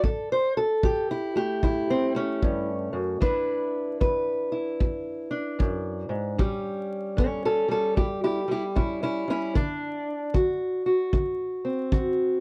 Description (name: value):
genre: acoustic country blues, solo or duo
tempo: 76 BPM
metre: 4/4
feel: swing 64% on 8ths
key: A mixolydian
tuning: A4 = 440 Hz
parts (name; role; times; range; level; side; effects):
- fingerpicked steel-string acoustic guitar; melody; 0.0-12.4 s; E2 to C5; -27 LUFS; equal; none
- kick drum; drums; 0.0-12.2 s; none; -28 LUFS; equal; none
room: little or no reverb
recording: vinyl crackle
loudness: -27 LUFS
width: mono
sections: 0.0-6.4 A section; 6.4-12.4 B section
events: steel-string acoustic guitar solo 6.4-12.4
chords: 0.0 A7; 3.2 E7(no3); 6.4 A7; 9.6 D7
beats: | 0.03 0.83 1.63 2.42 | 3.22 4.01 4.81 5.60 | 6.39 7.19 7.98 8.77 | 9.56 10.35 11.13 11.92